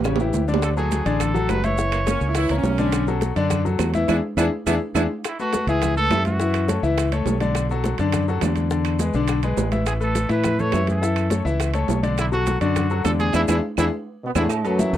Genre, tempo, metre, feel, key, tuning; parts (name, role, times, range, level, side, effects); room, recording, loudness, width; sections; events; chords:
latin, salsa; 208 BPM; 4/4; straight; A major; A4 = 441 Hz
bright grand piano; accompaniment; 0.0-15.0 s; C#3 to E5; -24 LUFS; left 5 dB
fingered electric bass; bass; 0.0-15.0 s; F#1 to A2; -23 LUFS; right 1 dB
claves; percussion; 0.0-14.6 s; -35 LUFS; right 21 dB
congas; percussion; 0.0-15.0 s; -29 LUFS; equal
maracas; percussion; 0.0-15.0 s; -38 LUFS; right 18 dB
bongos and cowbell; percussion; 0.1-15.0 s; -31 LUFS; left 4 dB
timbales and agogo bells; percussion; 0.1-14.9 s; -30 LUFS; right 12 dB
clear trumpet; melody; 0.6-2.5, 5.3-6.8, 9.9-14.4 s; E4 to C#5; -26 LUFS; right 2 dB
bright saxophone section; second line; 1.9-5.0 s; A#3 to E4; -26 LUFS; right 6 dB
brilliant trombone section; melody; 14.2-15.0 s; F#2 to B3; -23 LUFS; right 2 dB
light reverb; dry, close 1970s-style studio recording; -19 LUFS; side -11 dB against mid
0.0-5.2 A section; 5.2-14.5 B section
drum fill 0.0-0.6, 4.7-5.2, 13.6-14.5; band accent 4.1-5.2, 13.3-14.5
0.0 A7; 0.6 Dadd9; 1.8 F#7; 2.9 Bm9; 4.1 E7; 5.2 Aadd9; 6.4 F#m7; 7.6 Bm7; 8.7 E7; 9.9 Aadd9; 11.0 F#m7; 12.2 Bm7; 13.3 E7